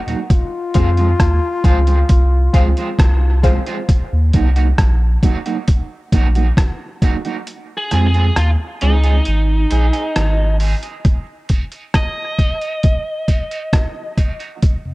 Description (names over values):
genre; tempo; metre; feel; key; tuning
dub reggae; 67 BPM; 4/4; straight; Eb dorian; A4 = 440 Hz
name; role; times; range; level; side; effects
electric guitar at the edge of break-up; accompaniment; 0.1-14.5 s; F3 to Ab4; -24 LUFS; right 5 dB; harmonic tremolo, high-pass filter, dub echo
mellow tonewheel organ; accompaniment; 0.1-0.2, 11.3-14.9 s; Eb2 to C3; -27 LUFS; left 1 dB; slow rotary speaker, high-pass filter
trip hop sampler-style drum kit; drums; 0.1-14.8 s; hi-hat, kick drum, rim click; -15 LUFS; equal; none
brilliant trombone; second line; 0.3-3.4 s; F4; -23 LUFS; left 4 dB; dub echo
filtered dub chord stab; stabs; 0.7-3.6 s; F4 to F5; -26 LUFS; left 4 dB; phaser, dub echo
warm sub bass; bass; 0.8-10.7 s; Ab1 to F2; -14 LUFS; equal; none
biting lead guitar; melody; 7.8-14.1 s; Eb4 to Eb5; -23 LUFS; equal; overdrive, dub echo
room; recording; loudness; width
digital ambience; dark, warm production; -14 LUFS; side -20 dB against mid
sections
0.0-11.1 A section; 11.1-14.9 B section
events
break 0.0-7.5, 11.1-14.9; kick muted 7.5-11.1; filter sweep 7.5-14.6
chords
0.3 Fm; 3.9 Ebm; 7.5 Fm; 9.3 Ab; 11.1 Ebm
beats
| 0.30 1.20 2.09 2.99 | 3.88 4.78 5.68 6.57 | 7.47 8.36 9.26 10.15 | 11.05 11.95 12.84 13.74 | 14.63